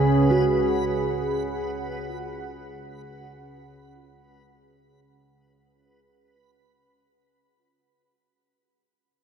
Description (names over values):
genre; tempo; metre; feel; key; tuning
dark ambient drone; free time; none; none; unclear; A4 = 440 Hz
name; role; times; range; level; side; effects
deep dark ambient pad; sustained chords; 0.0-5.5 s; C#4 to F#5; -26 LUFS; equal; chorus, built-in reverb
bowed-like drone; drone; 0.0-5.6 s; C#2 to C#3; -28 LUFS; right 2 dB; built-in reverb
backwards swelling texture; texture; 0.0-5.5 s; B4; -34 LUFS; left 2 dB; built-in reverb
gamelan-type bossed gongs; arpeggios; 0.3-7.6 s; F#4; -28 LUFS; right 4 dB; ping-pong delay
room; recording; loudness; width
wet huge ambient reverb, RT60 8.0 s; dreamy mix soaked in reverb; -22 LUFS; side -8 dB against mid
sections
0.0-5.5 A section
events
fade-out 0.0-5.5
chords
0.0 C#5